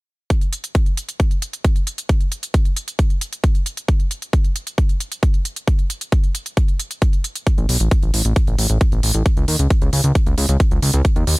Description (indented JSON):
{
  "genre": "uplifting trance",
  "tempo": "134 BPM",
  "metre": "4/4",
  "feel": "straight",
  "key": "unclear",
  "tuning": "A4 = 440 Hz",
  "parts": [
    { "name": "electronic hi-hat", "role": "drums", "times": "0.3-11.4 s", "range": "none", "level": "-25 LUFS", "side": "right 1 dB", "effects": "overdrive, sidechain pumping on hats" },
    { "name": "electronic kick drum", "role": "drums", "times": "0.3-11.1 s", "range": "none", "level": "-16 LUFS", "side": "equal", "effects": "none" },
    { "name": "fat analog bass", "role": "bass", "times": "7.6-11.4 s", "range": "A1 to D#2", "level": "-17 LUFS", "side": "equal", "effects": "sidechain pumping" }
  ],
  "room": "little or no reverb",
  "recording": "none",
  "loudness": "-16 LUFS",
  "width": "side -23 dB against mid",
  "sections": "0.3-11.4 A section",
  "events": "none",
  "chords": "none"
}